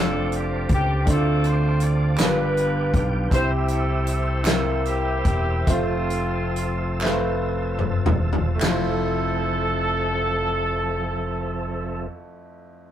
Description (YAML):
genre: slow gospel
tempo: 34-54 BPM (dotted quarters)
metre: 6/8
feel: straight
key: F major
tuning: A4 = 440 Hz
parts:
  - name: clear horn section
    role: melody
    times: 0.0-12.1 s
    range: A3 to D5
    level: -27 LUFS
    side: equal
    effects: none
  - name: clear concert grand piano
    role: accompaniment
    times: 0.0-12.9 s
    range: F2 to E5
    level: -27 LUFS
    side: equal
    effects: none
  - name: tonewheel organ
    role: sustained chords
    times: 0.0-12.1 s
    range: F3 to E6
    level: -32 LUFS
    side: right 1 dB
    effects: slow rotary speaker, chorus vibrato
  - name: fingered electric bass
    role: bass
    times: 0.0-12.1 s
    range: E1 to D2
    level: -25 LUFS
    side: equal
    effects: none
  - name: natural country drum kit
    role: drums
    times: 0.3-8.9 s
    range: hi-hat, kick drum, ride cymbal, snare drum, toms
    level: -24 LUFS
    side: left 1 dB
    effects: none
  - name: group handclap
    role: percussion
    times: 2.2-9.2 s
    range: none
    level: -31 LUFS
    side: right 1 dB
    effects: none
room: wet studio reverb, RT60 0.6 s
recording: rough rehearsal-room recording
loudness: -20 LUFS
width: side -10 dB against mid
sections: 0.0-8.6 A section; 8.6-12.1 B section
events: slowing down 3.3-8.6; drum fill 7.0-8.6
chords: 0.0 F6; 1.1 Dm7; 2.2 G7; 3.3 C; 5.7 Fmaj7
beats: | 1.07 2.19 | 3.31 4.46 | 5.67 7.03 | 8.62 10.36